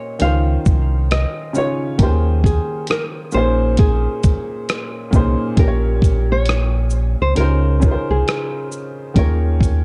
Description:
lo-fi hip hop; 67 BPM; 4/4; swing 63% on 16ths; Bb dorian; A4 = 440 Hz
nylon-string guitar; melody; 0.0-9.8 s; Ab4 to F5; -26 LUFS; equal; low-pass filter, tape echo
warm upright piano; accompaniment; 0.0-9.8 s; Bb2 to Db5; -25 LUFS; equal; cassette tape, low-pass filter
sub bass with octave; bass; 0.2-9.8 s; Bb1 to Eb2; -19 LUFS; equal
dusty soul sampler-style drum kit; drums; 0.2-9.8 s; hi-hat, kick drum, rim click, shaker; -19 LUFS; equal
light reverb, digital ambience; dark, warm production; -17 LUFS; mono
0.0-5.6 A section; 5.6-9.8 B section
0.2 Dbmaj9; 2.0 Eb13sus4; 3.3 Bbm11; 5.6 Bbm6; 7.4 Dbmaj9; 9.2 Eb9sus4

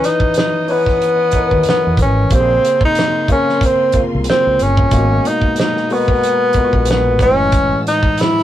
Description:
R&B, neo-soul; 92 BPM; 4/4; swing 56% on 16ths; A4 = 440 Hz
breathy tenor saxophone; melody; 0.0-8.4 s; B3 to E4; -14 LUFS; equal
barky tine electric piano; accompaniment; 0.0-8.4 s; A2 to B#4; -20 LUFS; left 1 dB; overdrive
warm studio string section; sustained chords; 0.0-8.4 s; G#3 to E6; -33 LUFS; equal
warm soul drum kit; drums; 0.0-8.4 s; hi-hat, kick drum, snare drum; -18 LUFS; right 1 dB
fretless electric bass; bass; 1.3-7.7 s; F#1 to E2; -18 LUFS; equal
moderate booth ambience, RT60 0.2 s; rough rehearsal-room recording, faint mains hum; -12 LUFS; side -12 dB against mid
0.0-8.4 A section
0.0 C#m9; 2.3 A#m9; 4.9 G#m9; 7.2 F#m9

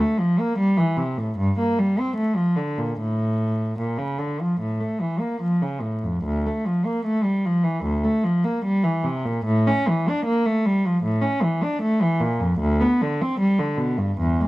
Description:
classical, baroque-style suite movement for unaccompanied cello; 74 BPM; 4/4; uneven beats, rubato; A4 = 440 Hz
warm cello; solo; 0.0-14.5 s; D2 to D4; -20 LUFS; equal
moderate stone room reverb, RT60 0.9 s; dark, warm production, vinyl crackle; -20 LUFS; side -18 dB against mid
0.0-14.5 A section

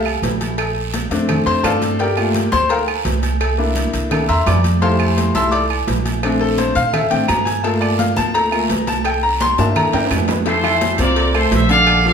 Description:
latin, salsa; 170 BPM; 4/4; straight; F major; A4 = 440 Hz
bright baby grand piano; accompaniment; 0.0-12.1 s; D3 to E6; -18 LUFS; left 2 dB
upright bass; bass; 0.0-12.1 s; Bb1 to Bb2; -21 LUFS; right 1 dB
agogo bells and timbales; percussion; 0.1-12.0 s; -24 LUFS; right 5 dB
claves; percussion; 0.1-12.1 s; -30 LUFS; right 9 dB
congas; percussion; 0.1-12.1 s; -25 LUFS; equal
cowbell and bongos; percussion; 0.2-12.0 s; -26 LUFS; left 3 dB
guiro; percussion; 0.2-12.1 s; -33 LUFS; right 6 dB
bright trumpet section; melody; 10.5-12.1 s; A4 to F5; -16 LUFS; right 1 dB
wet large studio reverb, RT60 0.9 s; band playing live in one room; -14 LUFS; side -7 dB against mid
0.0-10.5 A section; 10.5-12.1 B section
grand piano solo 0.0-10.5; drum fill 9.6-10.5
0.0 F (rootless); 0.6 Bbmaj7; 2.0 Gm7; 3.4 C7; 4.8 Fmaj7; 6.2 Bbmaj7; 7.6 Gm7; 9.1 C7; 10.5 Fmaj7

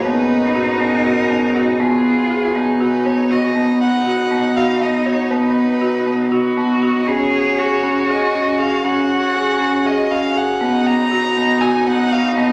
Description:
contemporary instrumental, chamber music in an uneven meter; 238 BPM (eighths); 7/8; straight; A4 = 440 Hz
warm violin; melody; 0.0-12.5 s; F#4 to A#5; -24 LUFS; equal
clear cello; second line; 0.0-12.5 s; D#4 to G#4; -25 LUFS; equal
pedal harmonium; sustained chords; 0.0-12.5 s; G#2 to A#5; -26 LUFS; equal
folk marimba with medium mallets; arpeggios; 0.1-12.5 s; B3 to G#4; -19 LUFS; equal
wet recital hall reverb, RT60 1.8 s; -17 LUFS; mono
0.0-3.6 A section; 3.6-12.5 B section
0.0 Bmaj9/G#; 1.8 G#m7; 3.6 B; 7.1 F#sus2; 10.6 B

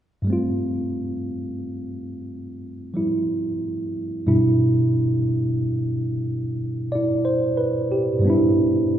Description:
jazz; 60 BPM; 4/4; swing 67% on 8ths; A4 = 437 Hz
barky tine electric piano; accompaniment; 0.2-9.0 s; G2 to D5; -20 LUFS; right 1 dB
wet scoring stage reverb, RT60 1.8 s; recorded in a church or concert hall, lossy compression artefacts; -20 LUFS; side -10 dB against mid
0.3-9.0 A section
0.3 G7sus4; 4.3 G6

